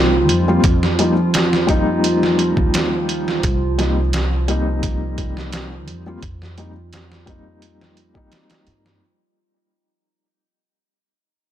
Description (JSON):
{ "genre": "trip hop", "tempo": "86 BPM", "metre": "4/4", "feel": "straight", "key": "unclear", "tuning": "A4 = 439 Hz", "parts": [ { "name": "felt-muted upright piano", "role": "accompaniment", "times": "0.0-9.0 s", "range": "G3 to F4", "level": "-22 LUFS", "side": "left 2 dB", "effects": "tremolo, tape echo" }, { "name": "warbly tape-like pad", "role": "sustained chords", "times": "0.0-9.0 s", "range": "F3 to F4", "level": "-22 LUFS", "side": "right 1 dB", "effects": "chorus, built-in reverb" }, { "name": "upright bass", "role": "bass", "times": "0.0-9.0 s", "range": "C2 to G2", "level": "-21 LUFS", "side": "equal", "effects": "tube saturation" }, { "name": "trip hop sampler-style drum kit", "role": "drums", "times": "0.3-9.0 s", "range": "hi-hat, kick drum, snare drum", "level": "-20 LUFS", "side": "right 1 dB", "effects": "overdrive" } ], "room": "light reverb", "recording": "none", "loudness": "-15 LUFS", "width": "side -11 dB against mid", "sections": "0.0-9.0 A section", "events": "fade-out 0.0-9.0", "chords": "0.0 Cm7; 0.6 F7sus4; 3.4 Cm7; 6.2 F7sus4" }